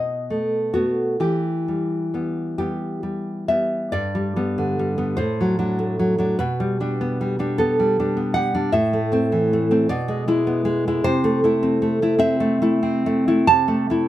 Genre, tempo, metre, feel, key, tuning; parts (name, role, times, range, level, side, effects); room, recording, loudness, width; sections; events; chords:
romantic piece for solo classical guitar; 43-54 BPM (dotted quarters); 6/8; rubato; E minor, G major from 3.9 s; A4 = 440 Hz
nylon-string guitar; solo; 0.0-14.1 s; G2 to A5; -19 LUFS; equal
light reverb; -19 LUFS; side -13 dB against mid
0.0-3.9 A section; 3.9-14.1 B section
0.0 B7; 1.2 Em; 3.9 G; 5.2 D7/A; 6.4 G/B; 8.7 Am; 9.9 E7/B; 11.0 Am/C